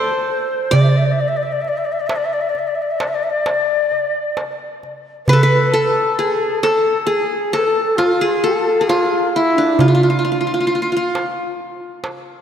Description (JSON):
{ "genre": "Turkish makam ensemble", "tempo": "133 BPM (eighths)", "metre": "10/8", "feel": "straight", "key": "D makam nikriz", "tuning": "A4 = 440 Hz", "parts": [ { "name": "qanun", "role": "melody", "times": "0.0-12.3 s", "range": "D4 to D5", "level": "-17 LUFS", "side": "equal", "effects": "none" }, { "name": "breathy reedy ney", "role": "second line", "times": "0.0-11.1 s", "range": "D4 to E5", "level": "-20 LUFS", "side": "left 3 dB", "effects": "tape echo" }, { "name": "darbuka", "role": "percussion", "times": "0.7-12.2 s", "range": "none", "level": "-19 LUFS", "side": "right 2 dB", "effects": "none" } ], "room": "wet lush hall reverb, RT60 2.6 s", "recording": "dreamy mix soaked in reverb", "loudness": "-15 LUFS", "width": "side -8 dB against mid", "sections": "0.0-5.3 A section; 5.3-12.4 B section", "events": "none", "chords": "none" }